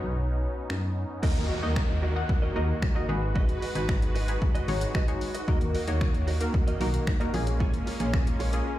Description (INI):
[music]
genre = dance-pop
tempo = 113 BPM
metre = 4/4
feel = straight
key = unclear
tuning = A4 = 440 Hz
[part]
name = funky polysynth comp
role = accompaniment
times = 0.0-8.8 s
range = A#3 to F#5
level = -33 LUFS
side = left 1 dB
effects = chorus, sidechain pumping
[part]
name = filtered supersaw swell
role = sustained chords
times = 0.0-8.8 s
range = D#3 to B4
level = -35 LUFS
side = equal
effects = sidechain pumping
[part]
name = solid FM bass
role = bass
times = 0.0-8.6 s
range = G#1 to F#2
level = -28 LUFS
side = equal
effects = sidechain pumping
[part]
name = punchy analog drum machine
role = drums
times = 0.7-8.7 s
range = crash cymbal, finger snaps, hi-hat, kick drum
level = -27 LUFS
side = equal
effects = overdrive
[part]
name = direct-recorded clean electric guitar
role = riff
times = 1.2-8.7 s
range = E#4 to D#5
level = -37 LUFS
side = right 5 dB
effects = ensemble chorus
[part]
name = downlifter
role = sound effects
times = 1.2-5.5 s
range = none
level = -39 LUFS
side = equal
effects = none
[sound]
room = light reverb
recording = played on a big sound system in a bare room, stone room reverb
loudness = -24 LUFS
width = side -14 dB against mid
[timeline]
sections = 0.0-1.2 A section; 1.2-8.8 B section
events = break 0.0-1.2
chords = 0.0 Badd9; 1.2 D#m; 3.1 G#m7; 5.5 D#m; 7.3 A#m7